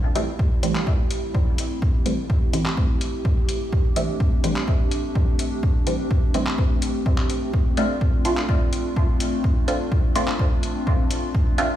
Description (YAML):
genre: dub techno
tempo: 126 BPM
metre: 4/4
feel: straight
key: A minor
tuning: A4 = 439 Hz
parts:
  - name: warbly tape-like pad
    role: sustained chords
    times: 0.3-11.8 s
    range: A3 to G4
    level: -28 LUFS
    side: equal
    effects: chorus, built-in reverb, sidechain pumping
  - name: filtered dub chord stab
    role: stabs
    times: 0.2-11.8 s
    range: E3 to F4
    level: -27 LUFS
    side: equal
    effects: phaser, sidechain pumping, dub echo
  - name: lo-fi sampler-style drum kit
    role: drums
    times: 0.2-11.7 s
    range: handclaps, hi-hat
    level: -32 LUFS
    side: left 1 dB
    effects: small room ambience, dub echo
  - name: electronic kick drum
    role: drums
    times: 0.4-11.4 s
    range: none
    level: -21 LUFS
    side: equal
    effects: overdrive, small room ambience
room: little or no reverb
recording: played on a big sound system in a bare room, stone room reverb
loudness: -19 LUFS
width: side -12 dB against mid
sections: 0.0-11.8 A section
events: none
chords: 0.0 Am7; 7.5 Dm7